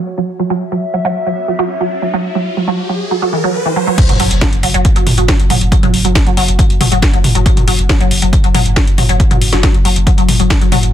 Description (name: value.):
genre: driving peak-time techno.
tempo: 138 BPM.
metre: 4/4.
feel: straight.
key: unclear.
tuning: A4 = 439 Hz.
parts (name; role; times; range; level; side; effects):
warbly tape-like pad; texture; 0.0-4.0 s; F#4 to F#5; -23 LUFS; left 1 dB; chorus, built-in reverb, sidechain pumping.
resonant blip pluck; riff; 0.2-10.8 s; E3 to F#3; -16 LUFS; equal; phaser, tube saturation, wide subtle chorus, vintage 12-bit sampler grit, sidechain pumping, ping-pong delay.
riser and impact; sound effects; 1.4-5.7 s; none; -21 LUFS; right 1 dB; none.
electronic kick drum; drums; 4.0-10.6 s; none; -12 LUFS; equal; none.
techno drum kit; drums; 4.0-10.9 s; crash cymbal, hi-hat, snare drum, toms; -15 LUFS; equal; sidechain pumping on hats, sidechain pumping on toms, sidechain pumping on cymbals.
saturated sub bass; bass; 4.1-10.9 s; F#1; -16 LUFS; equal; overdrive, sidechain pumping, low-pass filter.
room: digital ambience.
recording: dense, heavily limited modern master.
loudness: -10 LUFS.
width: side -11 dB against mid.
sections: 0.0-4.0 A section; 4.0-10.9 B section.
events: filter sweep on synth arpeggio sound 0.0-4.0; riser 1.4-4.0; drop 4.0-10.9; impact 4.0-5.7.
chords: 0.0 F#5; 4.0 N.C..